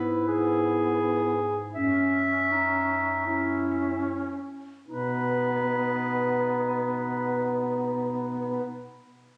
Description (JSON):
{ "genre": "classical, lyrical piece for single-reed quartet", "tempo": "35-46 BPM", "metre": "4/4", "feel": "rubato", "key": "B major", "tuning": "A4 = 439 Hz", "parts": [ { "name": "mellow soprano saxophone", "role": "melody", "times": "0.0-8.6 s", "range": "G#4 to E5", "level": "-30 LUFS", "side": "equal", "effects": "none" }, { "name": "mellow clarinet", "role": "second line", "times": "0.0-8.6 s", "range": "C#4 to E4", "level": "-33 LUFS", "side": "equal", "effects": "none" }, { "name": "mellow tenor saxophone", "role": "accompaniment", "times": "0.0-8.6 s", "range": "B3 to C#4", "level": "-32 LUFS", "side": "equal", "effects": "none" }, { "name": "dark bass clarinet", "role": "bass", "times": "0.0-8.6 s", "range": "F#2 to B2", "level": "-37 LUFS", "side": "equal", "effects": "none" } ], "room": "moderate recital hall reverb, RT60 1.6 s", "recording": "recorded on a phone in the room, club reverb, compression", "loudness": "-27 LUFS", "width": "mono", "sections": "0.0-4.9 A section; 4.9-9.4 B section", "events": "slowing down 0.0-4.9", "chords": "0.0 E/G#; 1.8 F#5; 4.9 B" }